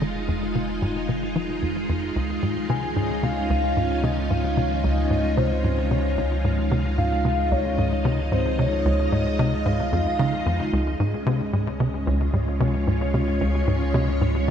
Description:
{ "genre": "ambient, sequencer-driven space music", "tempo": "112 BPM", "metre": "4/4", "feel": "straight", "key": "unclear", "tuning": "A4 = 440 Hz", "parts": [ { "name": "string machine, full ensemble", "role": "sustained chords", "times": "0.0-14.5 s", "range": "Ab3 to Eb5", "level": "-26 LUFS", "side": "equal", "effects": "ensemble chorus" }, { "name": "tight sequencer bass", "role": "riff", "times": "0.0-14.5 s", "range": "Db2 to F3", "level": "-25 LUFS", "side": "equal", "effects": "analog chorus, ping-pong delay" }, { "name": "warm sub bass", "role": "bass", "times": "0.0-14.5 s", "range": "F1 to Db2", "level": "-27 LUFS", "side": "equal", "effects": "none" }, { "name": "soft octave-layered synth lead", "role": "melody", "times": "2.7-10.5 s", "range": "C5 to Ab5", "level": "-27 LUFS", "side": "left 1 dB", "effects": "chorus, phaser, ping-pong delay" } ], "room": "moderate plate reverb, RT60 2.7 s", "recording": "echo-heavy mix", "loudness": "-21 LUFS", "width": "side -8 dB against mid", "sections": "0.0-10.7 A section; 10.7-14.5 B section", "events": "filter sweep on analog synth bass 0.0-10.7", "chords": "0.0 Fm7; 2.2 Dbadd9" }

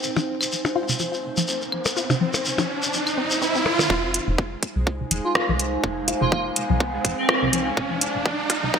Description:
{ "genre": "minimal techno", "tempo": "124 BPM", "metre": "4/4", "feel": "swing 56% on 16ths", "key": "F minor", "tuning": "A4 = 441 Hz", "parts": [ { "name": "shekere", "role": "percussion", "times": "0.0-3.9 s", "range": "none", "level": "-27 LUFS", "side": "left 2 dB", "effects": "none" }, { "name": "riser", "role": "sound effects", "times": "1.6-8.8 s", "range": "none", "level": "-27 LUFS", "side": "right 2 dB", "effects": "none" }, { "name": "pulsing gated texture", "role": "texture", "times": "0.0-8.8 s", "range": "Ab3 to C5", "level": "-34 LUFS", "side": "left 1 dB", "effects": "chorus, built-in reverb, sidechain pumping" }, { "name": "warbly tape-like pad", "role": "texture", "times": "0.0-8.8 s", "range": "Eb4 to Ab5", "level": "-30 LUFS", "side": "right 1 dB", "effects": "chorus, built-in reverb, sidechain pumping" }, { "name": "resonant blip pluck", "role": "riff", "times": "0.2-8.8 s", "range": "C3 to F4", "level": "-28 LUFS", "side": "left 2 dB", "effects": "phaser, sidechain pumping, digital delay" }, { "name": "percussion blips and claves", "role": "percussion", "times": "0.2-3.9 s", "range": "none", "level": "-28 LUFS", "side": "left 3 dB", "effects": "digital delay" }, { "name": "rubbery square bass", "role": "bass", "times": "3.9-8.8 s", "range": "F1 to C2", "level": "-28 LUFS", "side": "equal", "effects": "sidechain pumping" }, { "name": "electronic kick drum", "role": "drums", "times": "3.9-8.8 s", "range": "none", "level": "-22 LUFS", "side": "equal", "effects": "high-pass filter on kick" }, { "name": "booming analog drum machine", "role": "drums", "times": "4.1-8.6 s", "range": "hi-hat, rim click", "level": "-23 LUFS", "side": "equal", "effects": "none" }, { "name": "airy dreamy lead", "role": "melody", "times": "5.2-7.7 s", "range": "C4 to F4", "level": "-28 LUFS", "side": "right 2 dB", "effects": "chorus, digital delay" } ], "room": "moderate plate reverb, RT60 1.8 s, digital ambience", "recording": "bright 1980s-style digital production, high-pass filter", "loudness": "-20 LUFS", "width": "side -7 dB against mid", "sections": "0.0-3.9 A section; 3.9-8.8 B section", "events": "riser 1.6-3.9, 3.9-8.8; build-up 3.9-8.8; filter sweep on synth arpeggio sound 3.9-8.8", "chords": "0.0 Fm7" }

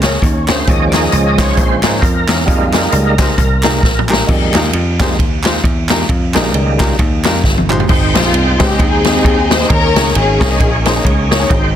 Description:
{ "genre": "uptempo gospel", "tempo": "133 BPM", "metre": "4/4", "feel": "swing 58% on 8ths", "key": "unclear", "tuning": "A4 = 437 Hz", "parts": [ { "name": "clear baby grand piano", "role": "accompaniment", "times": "0.0-11.8 s", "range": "Ab2 to Eb5", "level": "-20 LUFS", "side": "left 2 dB", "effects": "none" }, { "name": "overdriven tonewheel organ", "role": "sustained chords", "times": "0.0-11.8 s", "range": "Eb3 to G5", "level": "-18 LUFS", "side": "right 2 dB", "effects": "slow rotary speaker, chorus vibrato" }, { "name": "dry thumbed slap bass", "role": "bass", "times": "0.0-11.8 s", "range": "G1 to Ab2", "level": "-16 LUFS", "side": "equal", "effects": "none" }, { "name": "swinging big-band drum kit", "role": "drums", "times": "0.0-11.6 s", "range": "crash cymbal, hi-hat, kick drum, ride cymbal, snare drum, toms", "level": "-14 LUFS", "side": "equal", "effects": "none" }, { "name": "group handclap", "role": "percussion", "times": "0.0-7.8 s", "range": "none", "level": "-24 LUFS", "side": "right 4 dB", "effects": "none" }, { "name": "warm studio string section", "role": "melody", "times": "8.2-11.1 s", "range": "C4 to C5", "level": "-15 LUFS", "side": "left 3 dB", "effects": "none" } ], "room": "light reverb, small room ambience", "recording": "dense, heavily limited modern master", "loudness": "-10 LUFS", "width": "side -10 dB against mid", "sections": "0.0-4.3 A section; 4.3-7.9 B section; 7.9-11.8 C section", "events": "tonewheel organ solo 0.0-4.3; drum fill 3.8-4.3, 7.4-7.9", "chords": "0.0 Bbm9; 0.7 Eb7sus4; 2.5 Fm11; 7.9 Abmaj7; 9.7 Eb7sus4" }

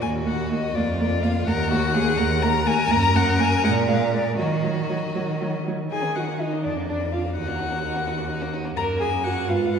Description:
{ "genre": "quick classical-period movement for string quartet", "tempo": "83 BPM (dotted quarters)", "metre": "6/8", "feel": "rubato", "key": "Eb minor", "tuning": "A4 = 440 Hz", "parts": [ { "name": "dark violin", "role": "melody", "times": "0.0-9.8 s", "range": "D5 to Bb5", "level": "-26 LUFS", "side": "left 6 dB", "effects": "none" }, { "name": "rich violin", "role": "second line", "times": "0.0-9.8 s", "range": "Bb3 to Bb4", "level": "-30 LUFS", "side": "left 1 dB", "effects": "none" }, { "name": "rich viola", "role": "accompaniment", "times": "0.0-9.8 s", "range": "Gb3 to Bb4", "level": "-26 LUFS", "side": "right 2 dB", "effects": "none" }, { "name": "warm cello", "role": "bass", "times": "0.0-9.8 s", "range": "Eb2 to Eb3", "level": "-25 LUFS", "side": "right 2 dB", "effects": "none" } ], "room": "wet concert hall reverb, RT60 2.4 s", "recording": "heard from further back in the room", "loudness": "-20 LUFS", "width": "side -7 dB against mid", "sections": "0.0-5.9 A section; 5.9-9.8 A section", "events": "none", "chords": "0.0 Ebm; 0.8 Bb5/F; 1.5 Ebm; 2.9 Gb; 3.6 Bb7; 4.4 Ebm; 5.9 Eb5; 6.6 Bb/F; 7.4 Ebm; 8.8 Gb" }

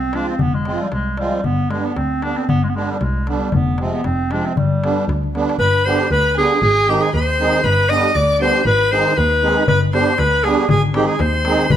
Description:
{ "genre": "balkan folk, Balkan wedding band", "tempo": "117 BPM", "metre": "2/4", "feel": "swing 53% on 16ths", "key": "G phrygian dominant", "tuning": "A4 = 436 Hz", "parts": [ { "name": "clear clarinet", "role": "melody", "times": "0.0-11.8 s", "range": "G3 to Eb5", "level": "-18 LUFS", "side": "equal", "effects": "none" }, { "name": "warm double bass", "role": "bass", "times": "0.0-11.8 s", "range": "F1 to Eb2", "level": "-21 LUFS", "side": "equal", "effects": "none" }, { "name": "musette accordion", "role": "accompaniment", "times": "0.1-11.7 s", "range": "C3 to Ab4", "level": "-21 LUFS", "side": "right 3 dB", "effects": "none" }, { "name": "darbuka", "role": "percussion", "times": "0.1-5.6, 9.7-11.8 s", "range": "none", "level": "-22 LUFS", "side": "left 5 dB", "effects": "none" }, { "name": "rich violin", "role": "second line", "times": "5.6-11.8 s", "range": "G5 to Eb6", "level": "-24 LUFS", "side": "left 2 dB", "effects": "none" } ], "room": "moderate recital hall reverb, RT60 1.4 s", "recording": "none", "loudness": "-14 LUFS", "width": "side -10 dB against mid", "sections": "0.0-5.6 A section; 5.6-11.8 B section", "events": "speeding up 0.0-11.8; drum fill 5.2-5.6", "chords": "0.0 Fm; 1.4 G; 3.5 Fm; 4.6 G; 6.6 Ab; 7.6 G; 8.7 Ab; 9.7 G; 10.7 Ab" }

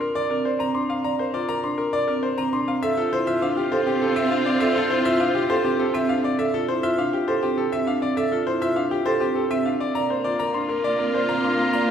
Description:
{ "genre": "classical, minimalist pattern music", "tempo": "101 BPM", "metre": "3/4", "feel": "straight", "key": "D minor", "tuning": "A4 = 441 Hz", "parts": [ { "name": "bright grand piano", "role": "melody", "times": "0.0-11.9 s", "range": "G4 to C6", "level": "-25 LUFS", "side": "left 5 dB", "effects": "none" }, { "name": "marimba with medium mallets", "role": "arpeggios", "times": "0.0-11.9 s", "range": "C4 to D5", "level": "-23 LUFS", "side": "right 4 dB", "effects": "none" }, { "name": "clear clarinet", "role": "second line", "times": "2.8-6.2, 10.0-11.9 s", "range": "Bb4 to C5", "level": "-30 LUFS", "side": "right 2 dB", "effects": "none" }, { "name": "rich symphonic string section", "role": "sustained chords", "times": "2.8-6.2, 10.0-11.9 s", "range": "Bb3 to F4", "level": "-27 LUFS", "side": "left 1 dB", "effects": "none" } ], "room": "wet scoring stage reverb, RT60 1.6 s", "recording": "heard from further back in the room", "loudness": "-20 LUFS", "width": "side -8 dB against mid", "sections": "0.0-11.9 A section", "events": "none", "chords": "0.0 Bb; 2.8 Dm9; 10.0 Bb" }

